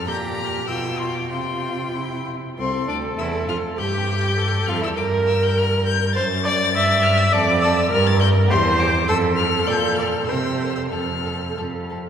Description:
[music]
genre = quick classical-period movement for string quartet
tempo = 90-104 BPM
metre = 2/4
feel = rubato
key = F major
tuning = A4 = 442 Hz
[part]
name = rich violin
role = melody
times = 0.0-11.5 s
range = C6 to A6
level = -25 LUFS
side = left 6 dB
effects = none
[part]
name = clear violin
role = second line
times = 0.0-12.0 s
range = C4 to Bb5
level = -27 LUFS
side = left 2 dB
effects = none
[part]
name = clear viola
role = accompaniment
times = 0.0-11.9 s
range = E4 to E5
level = -23 LUFS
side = right 1 dB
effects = none
[part]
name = clear cello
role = bass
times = 0.0-12.1 s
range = C2 to C3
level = -22 LUFS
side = right 1 dB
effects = none
[sound]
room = wet cathedral reverb, RT60 5.5 s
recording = recorded in a church or concert hall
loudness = -18 LUFS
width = side -8 dB against mid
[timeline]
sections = 0.0-2.6 A section; 2.6-12.1 B section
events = none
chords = 0.1 Gm/Bb; 0.7 G7/B; 1.3 Csus4; 1.9 C; 2.6 F/C (rootless); 3.8 N.C.; 4.4 F; 5.0 Gm; 6.1 D7/F#; 6.7 G5; 7.3 Dm/F; 7.9 Gm; 8.5 C/E; 9.1 F; 9.7 Bb; 10.3 C7; 10.9 F

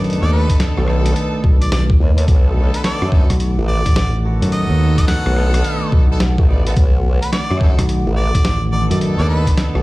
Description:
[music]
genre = glitch hop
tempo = 107 BPM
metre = 4/4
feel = swing 64% on 16ths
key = unclear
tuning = A4 = 440 Hz
[part]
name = dark analog pad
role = sustained chords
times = 0.0-9.8 s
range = D#3 to F#5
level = -25 LUFS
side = right 1 dB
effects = chorus, phaser, sidechain pumping
[part]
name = bright horn section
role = stabs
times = 0.0-9.8 s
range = B3 to D5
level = -26 LUFS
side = equal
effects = vintage 12-bit sampler grit, sidechain pumping, digital delay
[part]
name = fingered electric bass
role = bass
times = 0.0-9.4 s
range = A1 to F#2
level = -16 LUFS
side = equal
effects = none
[part]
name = boom bap sampler-style drum kit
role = drums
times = 0.0-9.8 s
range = hi-hat, rim click, snare drum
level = -23 LUFS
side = equal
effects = none
[part]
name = warm harmonica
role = melody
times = 0.2-9.5 s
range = B4 to F#5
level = -25 LUFS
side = equal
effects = digital delay
[part]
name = electronic kick drum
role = drums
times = 0.5-9.6 s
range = none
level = -14 LUFS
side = equal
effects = none
[part]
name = formant-sweep wobble bass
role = bass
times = 0.8-9.8 s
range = A1 to F#2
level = -16 LUFS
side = equal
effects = chorus
[sound]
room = light reverb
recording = played on a big sound system in a bare room, large studio reverb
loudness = -13 LUFS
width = side -19 dB against mid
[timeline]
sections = 0.0-9.8 A section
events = none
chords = 0.0 B7#9

